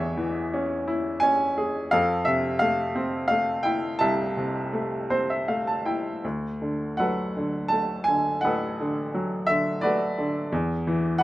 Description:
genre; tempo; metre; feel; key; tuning
classical, lyrical solo piano; 79-87 BPM; 3/4; rubato; unclear; A4 = 442 Hz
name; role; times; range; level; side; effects
bright upright piano; solo; 0.0-11.2 s; A1 to A5; -23 LUFS; equal; none
room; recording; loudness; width
little or no reverb; close, detailed microphones; -23 LUFS; side -16 dB against mid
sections
0.0-6.2 A section; 6.2-11.2 B section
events
upright piano fill 4.7-6.2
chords
0.0 Amaj7; 1.9 Fmaj7; 6.2 D6; 10.5 N.C.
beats
0.52 1.22 | 1.92 2.61 3.30 | 4.01 4.74 5.48 | 6.24 6.99 7.72 | 8.44 9.14 9.83 | 10.52 11.21

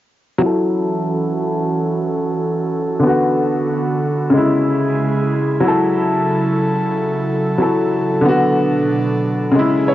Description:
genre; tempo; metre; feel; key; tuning
dancehall; 92 BPM; 4/4; straight; F# minor; A4 = 440 Hz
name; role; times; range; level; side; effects
clear grand piano; accompaniment; 0.4-9.9 s; C#3 to C#5; -16 LUFS; left 1 dB; low-pass filter
airy breathy pad; sustained chords; 0.4-9.9 s; B2 to A4; -19 LUFS; right 2 dB; chorus, low-pass filter
room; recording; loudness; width
moderate spring reverb, RT60 1.8 s; home recording on cassette, nothing above 7.5 kHz; -15 LUFS; side -14 dB against mid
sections
0.4-9.9 A section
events
filter sweep 0.4-9.9; grand piano fill 9.6-9.9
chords
0.4 F#m7; 3.0 D6; 4.3 C#m; 5.6 F#m7; 8.3 D6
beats
| 0.42 1.08 1.73 2.38 | 3.03 3.69 4.34 4.99 | 5.64 6.29 6.95 7.60 | 8.25 8.90 9.55

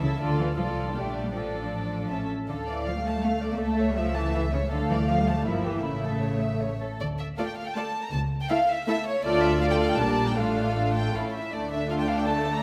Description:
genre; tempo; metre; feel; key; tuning
quick classical-period movement for string orchestra; 160 BPM; 3/4; straight; D minor; A4 = 440 Hz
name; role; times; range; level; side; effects
warm symphonic violin section; melody; 0.0-12.6 s; C#5 to Bb5; -34 LUFS; equal; none
warm symphonic violin section; second line; 0.0-12.6 s; A3 to A5; -34 LUFS; equal; none
dark symphonic viola section; accompaniment; 0.0-12.6 s; G3 to F4; -33 LUFS; equal; none
dark studio double bass section; bass; 0.0-12.6 s; G1 to D2; -34 LUFS; equal; none
rich symphonic cello section; bass; 0.0-12.6 s; C#2 to Bb3; -33 LUFS; equal; none
room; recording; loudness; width
wet concert hall reverb, RT60 1.9 s; none; -27 LUFS; mono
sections
0.0-7.0 A section; 7.0-12.6 A section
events
none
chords
0.2 Dm; 1.0 Gm/Bb; 1.3 Dm/A; 2.1 A; 2.5 Dm; 3.6 A/C#; 4.7 Dm; 5.5 Edim/G; 5.8 A; 7.0 Dm; 8.1 A/C#; 9.2 Dm; 10.0 Gm/Bb; 10.4 Dm/A; 11.1 A; 11.5 Dm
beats
| 0.21 0.58 0.96 | 1.34 1.72 2.10 | 2.49 2.87 3.24 | 3.61 3.98 4.35 | 4.71 5.08 5.46 | 5.84 6.23 6.62 | 7.00 7.38 7.76 | 8.13 8.50 8.88 | 9.25 9.62 9.99 | 10.37 10.75 11.13 | 11.52 11.89 12.26

